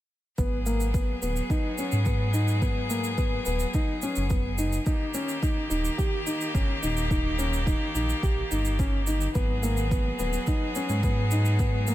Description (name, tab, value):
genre	piano and strings electronica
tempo	107 BPM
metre	4/4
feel	straight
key	G# minor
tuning	A4 = 440 Hz
part	bright string quartet	sustained chords	0.4-11.9 s	D#3 to G#4	-32 LUFS	left 1 dB	sidechain pumping
part	dark concert grand piano	riff	0.4-11.9 s	A#3 to G4	-30 LUFS	left 1 dB	tape echo
part	dark detuned saw bass	bass	0.4-11.9 s	D#1 to G#2	-27 LUFS	equal	sidechain pumping
part	electronic kick drum	drums	0.4-11.7 s	none	-27 LUFS	equal	overdrive
part	shaker	drums	0.4-11.9 s	none	-39 LUFS	right 3 dB	overdrive
room	little or no reverb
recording	none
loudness	-24 LUFS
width	side -14 dB against mid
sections	0.4-11.9 A section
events	none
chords	0.4 G#m7; 4.9 D#; 9.4 G#m7